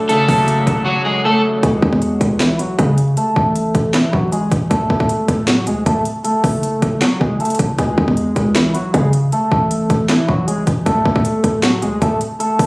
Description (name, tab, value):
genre	hip hop, trap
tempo	156 BPM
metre	4/4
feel	half-time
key	C# phrygian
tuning	A4 = 440 Hz
part	clear concert grand piano	accompaniment	0.0-1.6 s	C#3 to A3	-18 LUFS	equal	low-pass filter
part	deep dark ambient pad	sustained chords	0.0-1.6 s	A4 to C#6	-27 LUFS	left 2 dB	chorus, built-in reverb
part	electric guitar at the edge of break-up	melody	0.1-12.7 s	E3 to A4	-17 LUFS	equal	low-pass filter, ping-pong delay
part	trap drum kit	drums	0.1-12.7 s	finger snaps, hi-hat, kick drum, snare drum	-17 LUFS	equal	none
part	hard-hitting 808-style bass	bass	0.3-12.7 s	D1 to C#3	-19 LUFS	equal	none
room	little or no reverb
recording	recorded on a phone in the room, studio reverb, vinyl crackle, compression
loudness	-13 LUFS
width	side -24 dB against mid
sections	0.0-1.6 A section; 1.6-12.7 B section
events	silent gap 0.9-1.6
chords	0.1 F#m; 1.6 C#m; 3.2 A5; 4.7 D; 6.2 F#m; 7.8 C#m; 9.3 A5; 10.9 D